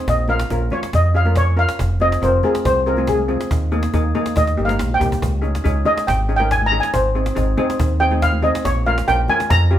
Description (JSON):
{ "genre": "calypso", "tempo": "140 BPM", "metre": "4/4", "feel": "straight", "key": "unclear", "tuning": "A4 = 440 Hz", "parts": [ { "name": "steel pan", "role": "melody", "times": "0.0-9.8 s", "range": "Ab4 to Bb5", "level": "-19 LUFS", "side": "equal", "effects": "none" }, { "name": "steel pan", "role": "accompaniment", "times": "0.0-9.8 s", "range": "Bb3 to Db5", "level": "-23 LUFS", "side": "left 1 dB", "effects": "none" }, { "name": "fingered electric bass with an envelope filter", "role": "bass", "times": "0.1-9.8 s", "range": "F1 to F2", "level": "-19 LUFS", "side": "equal", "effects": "none" }, { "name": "cajon", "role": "drums", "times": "0.1-9.8 s", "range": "none", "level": "-26 LUFS", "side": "equal", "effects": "none" }, { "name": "congas", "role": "percussion", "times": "0.3-9.4 s", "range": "none", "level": "-31 LUFS", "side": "equal", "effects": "none" } ], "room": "moderate studio reverb, RT60 0.7 s", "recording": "band playing live in one room", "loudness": "-15 LUFS", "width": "side -11 dB against mid", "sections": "0.0-9.8 A section", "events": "steel pan solo 0.0-9.8; drum fill 4.4-5.2", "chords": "0.1 Bbm; 1.8 Fm; 3.5 Ebsus4; 4.4 Eb; 5.2 Dbsus2; 6.9 Ab; 8.6 Bbm" }